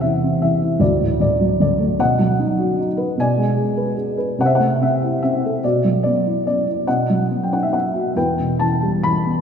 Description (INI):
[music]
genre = classical, lyrical solo piano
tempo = 46-51 BPM (dotted quarters)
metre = 6/8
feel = rubato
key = unclear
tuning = A4 = 441 Hz
[part]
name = felt-muted upright piano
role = solo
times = 0.0-9.4 s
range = D2 to B5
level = -16 LUFS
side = equal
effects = none
[sound]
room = wet church reverb, RT60 2.9 s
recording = recorded in a church or concert hall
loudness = -16 LUFS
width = side -7 dB against mid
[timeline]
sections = 0.0-9.4 A section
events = none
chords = 0.0 C/E; 0.8 D; 2.0 B; 3.2 Bm6; 4.4 Am/C; 5.6 Bsus4; 6.9 B; 8.2 Em